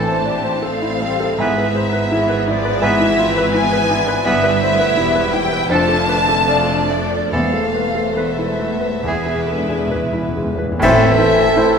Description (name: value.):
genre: classical, romantic movement for piano and orchestra.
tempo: 67-87 BPM.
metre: 4/4.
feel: rubato.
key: unclear.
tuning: A4 = 440 Hz.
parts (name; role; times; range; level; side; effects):
clear grand piano; melody; 0.0-11.8 s; E2 to E5; -20 LUFS; equal; none.
warm studio violin section; melody; 0.0-11.8 s; C5 to A5; -24 LUFS; left 2 dB; none.
bright oboe; second line; 0.0-11.1 s; G#4 to B4; -25 LUFS; right 2 dB; none.
mellow hollow flute section; second line; 0.0-11.8 s; A4 to A5; -22 LUFS; equal; none.
warm chamber violin section; second line; 0.0-11.8 s; D4 to E5; -24 LUFS; left 3 dB; none.
warm clarinet; second line; 0.0-11.1 s; B3 to D4; -27 LUFS; left 1 dB; none.
mellow bassoon; accompaniment; 0.0-11.1 s; E3 to F3; -25 LUFS; right 2 dB; none.
rich studio viola section; accompaniment; 0.0-11.8 s; D3 to A4; -26 LUFS; equal; none.
dark French horn section; sustained chords; 0.0-11.8 s; E3 to E4; -25 LUFS; left 2 dB; none.
dark studio cello section; bass; 0.0-11.5 s; E2 to A2; -27 LUFS; right 3 dB; none.
rich studio double bass section; bass; 0.0-11.5 s; E1 to A1; -27 LUFS; right 4 dB; none.
timpani; percussion; 7.3-11.8 s; E2 to A2; -26 LUFS; left 1 dB; none.
warm trombone section; sustained chords; 10.8-11.8 s; E3 to C4; -26 LUFS; right 6 dB; none.
mellow trumpet; stabs; 10.8-11.8 s; A4; -22 LUFS; right 3 dB; none.
clash cymbals and concert bass drum; percussion; 10.8-11.8 s; none; -26 LUFS; equal; none.
room: moderate scoring stage reverb, RT60 1.4 s.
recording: none.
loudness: -14 LUFS.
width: side -6 dB against mid.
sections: 0.0-10.8 A section.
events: timpani fill 9.1-10.8; band accent 10.8-11.6.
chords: 0.0 Am; 1.4 E/G#; 4.3 Em/G; 5.7 Dm/F; 7.3 Esus4; 9.1 E; 10.8 Am.